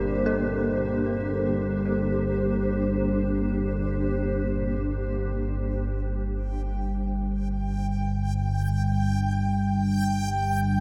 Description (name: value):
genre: dark ambient drone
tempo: free time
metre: none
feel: none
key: G minor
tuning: A4 = 441 Hz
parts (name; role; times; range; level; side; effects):
- granular cloud pad; sustained chords; 0.0-4.8 s; Bb3 to C5; -31 LUFS; equal; built-in reverb
- dark detuned synth bell; arpeggios; 0.0-10.8 s; A4 to Bb4; -38 LUFS; equal; chorus, phaser, tape echo
- analog drone; drone; 0.0-10.8 s; G1 to G2; -28 LUFS; equal; chorus
- backwards swelling texture; texture; 4.8-10.8 s; G5; -35 LUFS; equal; built-in reverb
room: wet huge ambient reverb, RT60 7.5 s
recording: in a vast, echoing space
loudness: -26 LUFS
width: mono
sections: 0.0-4.8 A section; 4.8-10.8 B section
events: none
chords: 0.0 Gm; 4.8 N.C.